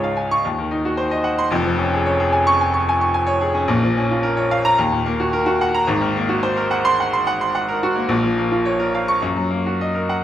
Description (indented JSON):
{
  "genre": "classical, virtuoso piano study",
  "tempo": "110 BPM",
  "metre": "4/4",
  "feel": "rubato",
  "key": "unclear",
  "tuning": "A4 = 439 Hz",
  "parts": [
    { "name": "bright grand piano", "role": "solo", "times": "0.0-10.2 s", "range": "E#1 to C#6", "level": "-17 LUFS", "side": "equal", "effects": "none" }
  ],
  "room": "wet recital hall reverb, RT60 1.8 s",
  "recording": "none",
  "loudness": "-16 LUFS",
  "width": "side -11 dB against mid",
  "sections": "0.0-10.2 A section",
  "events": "none",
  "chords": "0.5 Cdim/Eb; 1.5 C#/E#; 3.7 Bbm; 4.8 Ebm; 5.9 Ab9; 8.1 Bbm; 9.2 Ebm/Gb",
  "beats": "0.46 0.99 | 1.52 2.07 2.61 3.15 | 3.70 4.24 4.79 5.33 | 5.88 6.43 6.99 7.54 | 8.10 8.66 9.22 9.80"
}